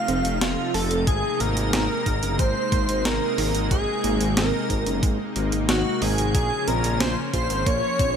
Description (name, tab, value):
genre	synthwave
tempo	91 BPM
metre	4/4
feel	straight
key	unclear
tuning	A4 = 440 Hz
part	wide unison lead	melody	0.0-8.2 s	F4 to F5	-27 LUFS	equal	lush chorus, ping-pong delay
part	airy dreamy lead	second line	0.0-8.2 s	F4 to F5	-30 LUFS	equal	chorus, ping-pong delay
part	lush unison pad	sustained chords	0.0-8.2 s	C3 to Eb4	-28 LUFS	equal	chorus, sidechain pumping
part	wide unison pluck	arpeggios	0.1-8.2 s	Ab3 to A4	-33 LUFS	right 4 dB	none
part	dark detuned saw bass	bass	0.1-8.1 s	F1 to Bb1	-26 LUFS	equal	tube saturation, sidechain pumping
part	clean 12-bit digital drum machine	drums	0.1-8.1 s	hi-hat, snare drum	-28 LUFS	right 1 dB	small room reverb
part	electronic kick drum	drums	1.1-8.1 s	none	-24 LUFS	equal	small room reverb
room	light reverb, digital ambience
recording	bright 1980s-style digital production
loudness	-20 LUFS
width	side -7 dB against mid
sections	0.0-8.2 A section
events	none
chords	0.0 F; 1.1 Abadd9; 6.3 Bbmadd9